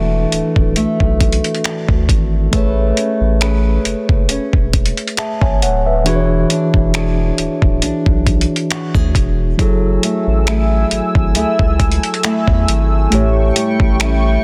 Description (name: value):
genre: contemporary R&B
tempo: 68 BPM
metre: 4/4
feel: swing 54% on 16ths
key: A major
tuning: A4 = 439 Hz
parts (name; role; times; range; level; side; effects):
- mellow tine electric piano; accompaniment; 0.0-14.4 s; E3 to A5; -22 LUFS; equal; none
- flamenco guitar; arpeggios; 0.0-14.4 s; A2 to C#5; -24 LUFS; equal; delay
- saturated sub bass; bass; 0.0-14.4 s; D1 to E2; -19 LUFS; equal; none
- dusty soul sampler-style drum kit; drums; 0.3-14.2 s; finger snaps, hi-hat, kick drum; -18 LUFS; equal; soft clipping on snare
- chorused pulse-width pad; sustained chords; 10.0-14.4 s; A3 to E6; -24 LUFS; equal; none
room: digital ambience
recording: dense, heavily limited modern master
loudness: -15 LUFS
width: mono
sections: 0.0-9.6 A section; 9.6-14.4 B section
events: none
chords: 0.0 E9sus4; 2.5 Amaj9; 6.1 E13; 9.6 F#m9; 13.1 A7